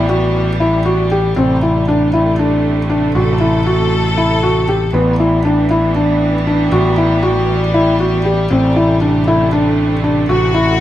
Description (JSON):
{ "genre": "contemporary instrumental, chamber music in an uneven meter", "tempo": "235 BPM (eighths)", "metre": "7/8", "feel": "straight", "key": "A dorian", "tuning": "A4 = 440 Hz", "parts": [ { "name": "rich symphonic string section", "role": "sustained chords", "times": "0.0-10.8 s", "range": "C3 to A4", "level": "-19 LUFS", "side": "right 2 dB", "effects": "none" }, { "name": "felt-muted upright piano", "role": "arpeggios", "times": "0.0-10.7 s", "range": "B3 to G4", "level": "-15 LUFS", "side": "left 1 dB", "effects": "none" }, { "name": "growling picked electric bass", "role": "bass", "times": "0.0-10.8 s", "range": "A1", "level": "-16 LUFS", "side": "equal", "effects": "overdrive" } ], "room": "light reverb", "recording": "close, detailed microphones", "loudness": "-12 LUFS", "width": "side -13 dB against mid", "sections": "0.0-10.8 A section", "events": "none", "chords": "0.0 G6/A; 1.4 Am7; 4.9 G6/A; 8.5 Am7" }